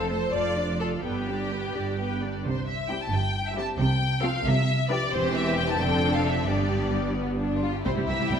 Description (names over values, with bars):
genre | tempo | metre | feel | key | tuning
quick classical-period movement for string orchestra | 88 BPM (dotted quarters) | 6/8 | straight | C major | A4 = 440 Hz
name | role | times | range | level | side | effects
rich studio violin section | melody | 0.0-8.4 s | C5 to A5 | -30 LUFS | left 3 dB | none
rich studio violin section | second line | 0.0-8.4 s | B3 to D5 | -30 LUFS | left 2 dB | none
rich studio viola section | accompaniment | 0.0-8.4 s | D3 to C5 | -31 LUFS | right 1 dB | none
bright studio cello section | bass | 0.0-8.3 s | E2 to C3 | -31 LUFS | right 3 dB | none
rich studio double bass section | bass | 0.0-8.4 s | E1 to C2 | -30 LUFS | right 2 dB | none
room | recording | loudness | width
wet scoring stage reverb, RT60 1.5 s | none | -24 LUFS | side -7 dB against mid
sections
0.0-2.4 A section; 2.4-8.4 B section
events
none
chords
0.3 Dm/F; 1.0 G; 2.4 C; 3.8 F/C; 4.5 G7/C; 5.1 C/E; 5.8 Dm7/F; 6.5 G; 7.8 C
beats
0.34 | 1.04 1.74 | 2.45 3.12 | 3.79 4.46 | 5.12 5.79 | 6.47 7.16 | 7.85